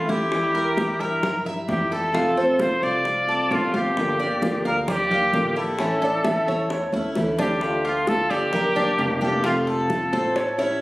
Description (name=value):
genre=latin, Cuban son and guajira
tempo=132 BPM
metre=4/4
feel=straight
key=unclear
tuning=A4 = 441 Hz
part: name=breathy trumpet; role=melody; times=0.0-10.5 s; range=F4 to D5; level=-24 LUFS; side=equal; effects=none
part: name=fingerpicked steel-string acoustic guitar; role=accompaniment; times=0.0-10.8 s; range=C3 to G4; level=-26 LUFS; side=left 1 dB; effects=none
part: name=Cuban tres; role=arpeggios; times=0.0-10.8 s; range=C#4 to F5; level=-28 LUFS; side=right 1 dB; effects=tape echo
part: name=upright bass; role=bass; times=0.0-10.8 s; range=F1 to G2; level=-33 LUFS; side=equal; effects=none
part: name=bongos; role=percussion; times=0.1-10.8 s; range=none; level=-33 LUFS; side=left 2 dB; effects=none
part: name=congas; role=percussion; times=0.1-10.8 s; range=none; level=-30 LUFS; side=equal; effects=none
part: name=felt-muted upright piano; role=second line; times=6.0-10.8 s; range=A4 to E5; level=-25 LUFS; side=equal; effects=none
room=moderate large studio reverb, RT60 0.9 s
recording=recorded on a phone in the room, studio reverb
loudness=-20 LUFS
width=side -19 dB against mid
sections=0.0-7.6 A section; 7.6-10.8 B section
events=drum fill 6.9-7.6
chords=0.3 Edim; 2.1 F; 4.0 Gm7; 5.8 A; 7.6 Dm; 8.5 Gm; 9.4 F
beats=| 0.32 0.78 1.23 1.69 | 2.14 2.60 3.06 3.51 | 3.97 4.43 4.88 5.34 | 5.79 6.25 6.71 7.16 | 7.62 8.08 8.53 8.99 | 9.45 9.90 10.36